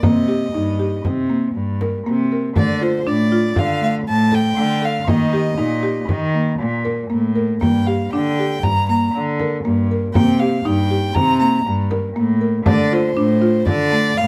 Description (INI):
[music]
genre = contemporary instrumental, chamber music in an uneven meter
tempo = 119 BPM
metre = 5/4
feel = straight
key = unclear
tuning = A4 = 440 Hz
[part]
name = dark violin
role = melody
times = 0.0-14.3 s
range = C5 to Bb5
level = -24 LUFS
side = equal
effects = none
[part]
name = buzzing marimba with medium mallets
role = arpeggios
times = 0.0-14.2 s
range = A3 to Bb4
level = -22 LUFS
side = equal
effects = none
[part]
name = rich cello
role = bass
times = 0.0-14.3 s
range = G2 to Eb3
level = -22 LUFS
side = equal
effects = none
[part]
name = frame drum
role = percussion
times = 0.0-14.0 s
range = none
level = -23 LUFS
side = equal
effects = none
[sound]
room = light reverb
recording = none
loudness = -18 LUFS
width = mono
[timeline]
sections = 0.0-14.3 A section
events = none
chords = 0.0 Cm7; 2.6 Dm; 5.1 Eb; 7.6 Gm; 10.2 C7(no3); 12.7 Dm7